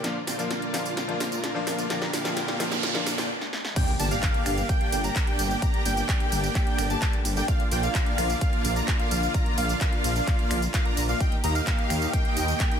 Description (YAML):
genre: EDM, festival progressive house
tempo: 129 BPM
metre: 4/4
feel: straight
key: G minor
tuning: A4 = 440 Hz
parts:
  - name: bright grand piano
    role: accompaniment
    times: 0.0-3.0 s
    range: F3 to F4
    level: -33 LUFS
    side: left 4 dB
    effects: sidechain pumping, tape echo
  - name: rich studio string section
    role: sustained chords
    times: 0.0-12.8 s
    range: D3 to G4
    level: -35 LUFS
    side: left 1 dB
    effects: sidechain pumping
  - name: dense compressed supersaw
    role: riff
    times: 0.0-12.8 s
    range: Bb3 to Bb5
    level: -31 LUFS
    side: equal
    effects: sidechain pumping, low-pass filter, tape echo
  - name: big-room dance drum kit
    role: drums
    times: 0.0-12.8 s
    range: crash cymbal, finger snaps, handclaps, hi-hat, ride cymbal, snare drum, tambourine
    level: -31 LUFS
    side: right 1 dB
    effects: high-pass filter on snare, high-pass filter on hats, high-pass filter on perc, high-pass filter on cymbals
  - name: riser, noise sweep and impact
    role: sound effects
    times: 0.0-5.6 s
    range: none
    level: -34 LUFS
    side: right 2 dB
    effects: none
  - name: wide detuned saw bass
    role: bass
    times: 0.3-12.5 s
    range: G1 to Eb2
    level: -28 LUFS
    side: equal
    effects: chorus, sidechain pumping, high-pass filter
  - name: wide unison lead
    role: arpeggios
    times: 3.8-12.8 s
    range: F5 to Bb5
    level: -30 LUFS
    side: equal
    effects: wide subtle chorus, sidechain pumping, tape echo
  - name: electronic kick drum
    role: drums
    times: 3.8-12.7 s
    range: none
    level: -25 LUFS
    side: equal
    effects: none
room: light reverb, digital ambience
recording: none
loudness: -23 LUFS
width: side -8 dB against mid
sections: 0.0-3.8 A section; 3.8-12.8 B section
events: build-up 0.0-3.8; drum fill 0.0-3.3, 3.4-3.8; riser 0.0-3.3; noise sweep 1.9-3.8; stop 3.3-3.8; drop 3.8-12.8; impact 3.8-5.6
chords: 0.0 Bb; 3.8 Gm; 7.5 Bb; 11.2 Eb